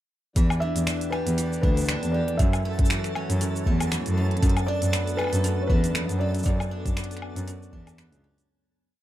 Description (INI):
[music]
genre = folktronica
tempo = 118 BPM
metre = 4/4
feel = swing 56% on 16ths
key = B minor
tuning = A4 = 439 Hz
[part]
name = pedal harmonium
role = sustained chords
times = 0.4-8.5 s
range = D3 to D5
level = -38 LUFS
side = left 1 dB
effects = none
[part]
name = picked steel-string acoustic guitar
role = arpeggios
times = 0.4-9.0 s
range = F#2 to A4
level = -33 LUFS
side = left 1 dB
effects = none
[part]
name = dark cello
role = bass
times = 0.4-8.2 s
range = C#2 to F#2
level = -26 LUFS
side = equal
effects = none
[part]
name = electronic kick drum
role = drums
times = 0.4-7.8 s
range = none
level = -23 LUFS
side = equal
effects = overdrive
[part]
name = organic electronic drum kit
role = drums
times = 0.4-8.5 s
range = finger snaps, hi-hat, shaker, woodblock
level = -31 LUFS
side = left 1 dB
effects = none
[part]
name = twinkling granular texture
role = texture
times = 1.0-8.5 s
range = A4 to A5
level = -40 LUFS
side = right 2 dB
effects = built-in reverb
[part]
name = felt-muted upright piano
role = melody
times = 0.6-8.2 s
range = B4 to E5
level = -32 LUFS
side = right 2 dB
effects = tape echo
[sound]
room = light reverb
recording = none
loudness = -22 LUFS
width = side -13 dB against mid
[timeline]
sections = 0.4-8.5 chorus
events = fade-out 5.8-8.5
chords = 0.4 Em7; 2.4 F#m7; 4.4 D6/F#; 6.5 Bmadd9/F#